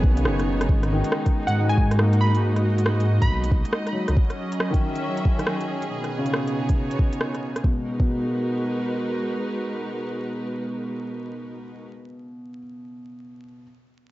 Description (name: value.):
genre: future garage.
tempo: 138 BPM.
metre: 4/4.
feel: swing 64% on 16ths.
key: G# minor.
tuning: A4 = 440 Hz.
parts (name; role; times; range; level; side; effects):
felt-muted upright piano; accompaniment; 0.0-13.6 s; B2 to A#3; -29 LUFS; left 1 dB; sidechain pumping, analog delay.
clear symphonic string section; sustained chords; 0.0-11.9 s; B2 to E5; -28 LUFS; right 1 dB; sidechain pumping.
dark detuned saw bass; bass; 0.0-4.2 s; F#1 to G#2; -21 LUFS; equal; tube saturation, sidechain pumping.
electronic kick drum; drums; 0.0-8.1 s; none; -20 LUFS; equal; overdrive, small room ambience.
wind-like tuned noise texture; texture; 0.0-0.7 s; D#5; -47 LUFS; right 2 dB; none.
organic electronic drum kit; drums; 0.2-7.6 s; hi-hat, rim click; -28 LUFS; equal; overdrive, small room ambience.
glassy wavetable pluck; melody; 1.5-3.5 s; F#5 to B5; -30 LUFS; right 1 dB; chorus, cassette tape, analog delay.
room: light reverb, digital ambience.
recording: vinyl crackle, nothing above 7.7 kHz.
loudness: -21 LUFS.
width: side -16 dB against mid.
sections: 0.7-7.6 A section; 7.6-11.1 B section.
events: none.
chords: 0.0 B69; 0.7 G#m9; 4.2 F#5; 5.9 B69; 7.6 G#m9.